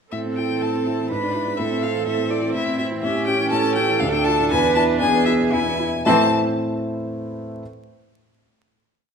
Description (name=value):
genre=quick classical-period movement for piano quartet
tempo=121 BPM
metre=3/4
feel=rubato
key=A minor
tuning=A4 = 440 Hz
part: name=rich violin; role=melody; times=0.1-6.3 s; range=D5 to B5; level=-23 LUFS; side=left 7 dB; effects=none
part: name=clear cello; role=second line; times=0.1-6.4 s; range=E3 to B4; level=-24 LUFS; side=right 8 dB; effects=none
part: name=clear viola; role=accompaniment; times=0.1-6.4 s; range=C4 to D4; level=-28 LUFS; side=right 3 dB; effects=none
part: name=dark baby grand piano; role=accompaniment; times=0.1-7.6 s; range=D2 to E5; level=-22 LUFS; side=equal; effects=none
room=moderate recital hall reverb, RT60 1.4 s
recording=minimal, uncompressed stereo recording, vinyl crackle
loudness=-18 LUFS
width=side -6 dB against mid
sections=0.1-6.1 A section; 6.1-7.6 final chord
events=none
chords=0.1 Am; 1.1 E7/G#; 1.6 Am; 3.0 A7; 4.0 Dm; 4.5 E7; 6.1 Am